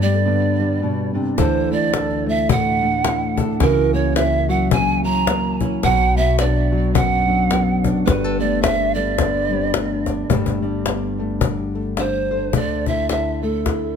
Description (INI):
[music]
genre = acoustic folk duo or small band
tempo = 108 BPM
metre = 4/4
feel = swing 59% on 8ths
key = unclear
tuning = A4 = 440 Hz
[part]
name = pan flute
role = melody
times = 0.0-14.0 s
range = A4 to A#5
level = -21 LUFS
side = right 4 dB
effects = tape echo
[part]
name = nylon-string guitar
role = accompaniment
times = 0.0-14.0 s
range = F#2 to C5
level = -23 LUFS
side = left 5 dB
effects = none
[part]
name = felt-muted upright piano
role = arpeggios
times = 0.0-14.0 s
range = E3 to A4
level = -25 LUFS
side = right 8 dB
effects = none
[part]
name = upright bass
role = bass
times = 0.0-14.0 s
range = G1 to G2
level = -24 LUFS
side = equal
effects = none
[part]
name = cajon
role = percussion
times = 1.4-13.8 s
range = none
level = -21 LUFS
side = left 6 dB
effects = none
[sound]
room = light reverb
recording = close, detailed microphones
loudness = -16 LUFS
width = side -7 dB against mid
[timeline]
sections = 0.0-10.3 A section; 10.3-12.5 B section; 12.5-14.0 C section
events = none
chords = 0.0 Gadd9; 1.4 Dsus2; 3.6 F#7/C#; 5.8 Bm; 8.1 Gadd9; 12.5 Dsus2